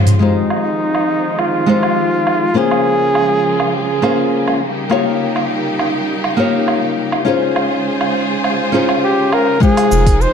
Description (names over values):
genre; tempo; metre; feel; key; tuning
sunset chillout; 102 BPM; 4/4; straight; unclear; A4 = 439 Hz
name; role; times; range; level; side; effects
flamenco guitar; accompaniment; 0.0-10.3 s; Ab3 to G5; -17 LUFS; moving between left 6 dB and right 4 dB; auto-pan, ping-pong delay
clear studio string section; sustained chords; 0.0-10.3 s; C3 to C5; -22 LUFS; equal; low-pass filter
smooth R&B drum kit; drums; 0.1-10.3 s; cabasa, hi-hat, toms, woodblock; -20 LUFS; right 2 dB; low-pass filter on perc, low-pass filter on hats, low-pass filter on snare, low-pass filter on toms, low-pass filter on room
warm flugelhorn; melody; 0.2-4.6, 9.0-10.3 s; Eb4 to C5; -17 LUFS; right 1 dB; digital delay
electronic kick drum; drums; 9.6-10.2 s; none; -14 LUFS; equal; none
round analog bass; bass; 9.9-10.3 s; F1; -14 LUFS; equal; none
room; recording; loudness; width
moderate plate reverb, RT60 1.6 s; dark, warm production; -13 LUFS; side -7 dB against mid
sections
0.2-9.6 A section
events
break 0.0; drum fill 0.0; filter sweep on string section 0.2-9.6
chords
0.2 Fm7; 2.6 Bbm7; 4.6 Eb7; 7.3 Dbmaj7; 9.6 Fm7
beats
| 0.20 0.79 1.38 1.97 | 2.56 3.15 3.73 4.32 | 4.91 5.50 6.09 6.68 | 7.26 7.85 8.44 9.03 | 9.62 10.21